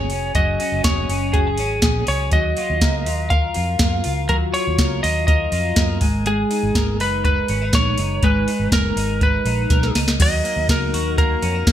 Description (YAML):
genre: jangly indie pop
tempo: 122 BPM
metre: 4/4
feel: straight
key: Eb minor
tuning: A4 = 441 Hz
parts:
  - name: lightly driven lead guitar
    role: melody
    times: 0.0-11.7 s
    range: Ab4 to F5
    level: -22 LUFS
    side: equal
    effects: digital delay
  - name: twelve-string electric guitar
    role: arpeggios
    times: 0.0-11.7 s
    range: Gb3 to Bb4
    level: -24 LUFS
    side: left 2 dB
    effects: analog chorus
  - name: vintage muted fingered electric bass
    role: bass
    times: 0.0-11.7 s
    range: F1 to Gb2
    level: -23 LUFS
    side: equal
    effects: none
  - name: soft vintage rhythm box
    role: drums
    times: 0.1-11.7 s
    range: crash cymbal, hi-hat, kick drum, snare drum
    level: -20 LUFS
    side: equal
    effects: gated reverb
room: light reverb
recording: bright 1980s-style digital production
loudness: -16 LUFS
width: side -11 dB against mid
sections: 0.0-10.2 A section; 10.2-11.7 B section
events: drum fill 9.7-10.2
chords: 0.0 Gbsus2; 2.3 Ebmadd9; 6.0 Abmadd9; 10.2 Ebm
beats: | 0.35 0.84 1.34 1.83 | 2.32 2.81 3.31 3.80 | 4.29 4.78 5.28 5.77 | 6.26 6.75 7.25 7.74 | 8.23 8.72 9.21 9.70 | 10.20 10.69 11.18 11.67